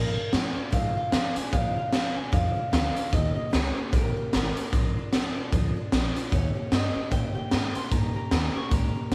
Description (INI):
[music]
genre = rockabilly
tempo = 150 BPM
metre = 4/4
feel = swing 59% on 8ths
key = Bb mixolydian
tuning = A4 = 440 Hz
[part]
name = electric guitar through a small old amp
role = melody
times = 0.0-9.1 s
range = Bb4 to Db6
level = -36 LUFS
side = equal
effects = none
[part]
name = picked steel-string acoustic guitar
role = accompaniment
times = 0.0-9.1 s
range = Bb2 to G4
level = -38 LUFS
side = equal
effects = none
[part]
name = upright bass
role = bass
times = 0.0-9.1 s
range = Ab1 to C3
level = -32 LUFS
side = equal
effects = none
[part]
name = raw garage drum kit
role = drums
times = 0.3-9.1 s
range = hi-hat, kick drum, snare drum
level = -28 LUFS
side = equal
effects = none
[sound]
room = light reverb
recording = band playing live in one room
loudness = -26 LUFS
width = mono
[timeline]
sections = 0.0-9.1 A section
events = none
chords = 0.0 Bb7; 3.1 Eb7; 4.7 Bb7; 6.3 Eb7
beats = 0.33 0.73 1.13 | 1.53 1.93 2.33 2.73 | 3.13 3.53 3.93 4.33 | 4.72 5.12 5.52 5.92 | 6.32 6.72 7.12 7.52 | 7.92 8.32 8.72 9.12